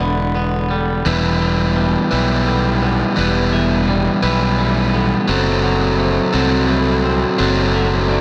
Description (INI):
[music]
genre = post-rock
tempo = 57 BPM (dotted quarters)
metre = 6/8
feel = straight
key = E minor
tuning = A4 = 440 Hz
[part]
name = deep dark ambient pad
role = sustained chords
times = 0.0-8.2 s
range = E3 to B5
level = -34 LUFS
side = equal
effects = none
[part]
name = electric guitar through a small old amp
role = arpeggios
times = 0.0-8.2 s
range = A4 to E5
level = -30 LUFS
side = equal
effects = tape echo
[part]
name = twangy electric guitar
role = arpeggios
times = 0.0-8.2 s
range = E2 to C4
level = -27 LUFS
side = equal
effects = tape echo
[part]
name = fuzz fingered electric bass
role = bass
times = 0.0-8.2 s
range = E1 to C2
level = -21 LUFS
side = equal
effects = overdrive
[part]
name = overdriven electric guitar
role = riff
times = 1.1-8.2 s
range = E3 to B4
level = -19 LUFS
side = equal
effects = none
[sound]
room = light reverb, digital ambience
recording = none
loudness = -17 LUFS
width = mono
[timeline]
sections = 0.0-1.1 A section; 1.1-8.2 B section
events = none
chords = 0.0 G6/E; 1.1 Emadd9; 5.3 F#dim